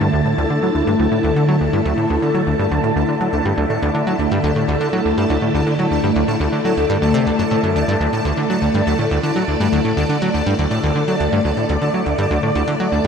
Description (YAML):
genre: ambient, sequencer-driven space music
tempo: 122 BPM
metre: 4/4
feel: straight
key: unclear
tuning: A4 = 444 Hz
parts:
  - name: phased string machine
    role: sustained chords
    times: 0.0-13.1 s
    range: D3 to A5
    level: -18 LUFS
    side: left 1 dB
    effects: ensemble chorus, phaser
  - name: plucky analog bass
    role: riff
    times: 0.0-13.1 s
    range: D2 to F#3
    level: -19 LUFS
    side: equal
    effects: tape echo
  - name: electronic hi-hat and bongos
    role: percussion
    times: 0.0-13.1 s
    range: none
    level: -47 LUFS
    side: equal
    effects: none
  - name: pulsing gated texture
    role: texture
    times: 0.0-13.1 s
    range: A5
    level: -31 LUFS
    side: right 3 dB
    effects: chorus, built-in reverb
room: wet lush hall reverb, RT60 2.9 s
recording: dreamy mix soaked in reverb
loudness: -15 LUFS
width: side -6 dB against mid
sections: 0.0-13.1 A section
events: none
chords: 0.0 Dsus2